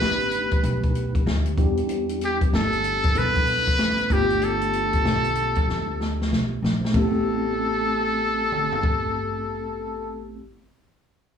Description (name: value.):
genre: hip hop, jazz-hop.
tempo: 95 BPM.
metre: 4/4.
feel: swing 65% on 16ths.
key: A minor.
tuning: A4 = 440 Hz.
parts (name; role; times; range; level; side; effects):
trumpet with metal mute; melody; 0.0-10.2 s; G4 to B4; -24 LUFS; left 1 dB; slapback echo.
mellow tine electric piano; accompaniment; 0.0-10.4 s; G3 to A4; -28 LUFS; left 1 dB; medium stereo tremolo, slapback echo.
upright bass; bass; 0.0-10.4 s; G1 to E2; -29 LUFS; equal; none.
open jazz drum kit; drums; 0.0-9.0 s; hi-hat, kick drum, ride cymbal, snare drum, toms; -25 LUFS; left 1 dB; none.
room: moderate club reverb, RT60 0.7 s.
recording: live gig heard through the venue's PA, club reverb, small room ambience.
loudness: -20 LUFS.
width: side -7 dB against mid.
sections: 0.0-6.9 A section; 6.9-9.5 B section.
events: drum fill 5.7-6.9.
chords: 0.0 B7alt; 1.6 Em7; 4.1 G9; 6.9 Am9.